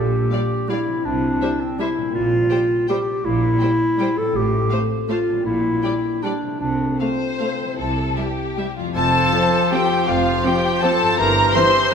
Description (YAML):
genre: classical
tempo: 146-176 BPM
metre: 3/4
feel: rubato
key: F major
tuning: A4 = 440 Hz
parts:
  - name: dark clarinet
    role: second line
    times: 0.0-11.9 s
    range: C4 to A4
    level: -22 LUFS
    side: left 1 dB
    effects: none
  - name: concert harp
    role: arpeggios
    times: 0.0-11.9 s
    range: F2 to G4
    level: -28 LUFS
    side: left 7 dB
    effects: none
  - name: clear studio double bass section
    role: bass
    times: 0.0-11.5 s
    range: F1 to C2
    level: -27 LUFS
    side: right 3 dB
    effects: none
  - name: rich studio cello section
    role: bass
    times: 0.0-11.5 s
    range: F2 to C3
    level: -27 LUFS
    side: right 2 dB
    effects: none
  - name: clear studio violin section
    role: melody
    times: 0.3-11.9 s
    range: E5 to C6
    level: -24 LUFS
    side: left 2 dB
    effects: none
  - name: warm studio violin section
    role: second line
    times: 0.3-11.9 s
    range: F4 to D5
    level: -27 LUFS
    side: left 4 dB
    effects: none
  - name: warm studio viola section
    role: accompaniment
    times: 0.3-11.6 s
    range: E3 to C4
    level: -29 LUFS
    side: right 3 dB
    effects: none
  - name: clear oboe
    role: second line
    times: 9.0-11.9 s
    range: C5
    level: -27 LUFS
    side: right 2 dB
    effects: none
  - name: silver concert flute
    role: second line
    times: 9.0-11.9 s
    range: F5 to C6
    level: -25 LUFS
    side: left 1 dB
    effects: none
  - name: clear bassoon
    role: accompaniment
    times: 9.0-11.9 s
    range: E3 to F3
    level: -25 LUFS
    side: right 3 dB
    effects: none
  - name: warm trumpet section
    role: stabs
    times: 9.0-11.9 s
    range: F4 to C5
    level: -23 LUFS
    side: right 1 dB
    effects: none
  - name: mellow French horn section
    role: sustained chords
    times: 9.3-11.7 s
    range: C4 to C5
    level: -29 LUFS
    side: left 2 dB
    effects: none
  - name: warm trombone section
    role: sustained chords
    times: 9.3-11.7 s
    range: F2 to F3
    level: -30 LUFS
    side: right 4 dB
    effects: none
room: wet concert hall reverb, RT60 1.9 s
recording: minimal, uncompressed stereo recording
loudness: -17 LUFS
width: side -6 dB against mid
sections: 0.0-9.0 A section; 9.0-11.9 B section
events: none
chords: 0.0 Gm7/Bb; 1.1 C; 2.2 C7/Bb; 4.4 F/A; 5.5 Gm/Bb; 6.6 F/C; 9.0 F; 11.2 C7/G